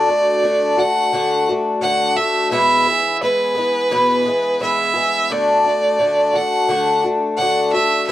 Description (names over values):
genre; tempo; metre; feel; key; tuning
rock; 86 BPM; 4/4; straight; D lydian; A4 = 440 Hz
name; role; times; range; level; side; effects
clear fiddle; melody; 0.0-8.1 s; B4 to F#5; -17 LUFS; right 2 dB; none
picked twelve-string acoustic guitar; accompaniment; 0.0-8.1 s; E2 to G#4; -18 LUFS; left 2 dB; none
room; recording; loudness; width
light reverb; dry, close 1970s-style studio recording; -15 LUFS; side -13 dB against mid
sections
0.0-8.1 A section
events
none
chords
0.0 D; 2.5 E; 5.3 D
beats
0.42 1.12 1.82 | 2.51 3.21 3.90 4.60 | 5.30 5.99 6.69 7.38 | 8.08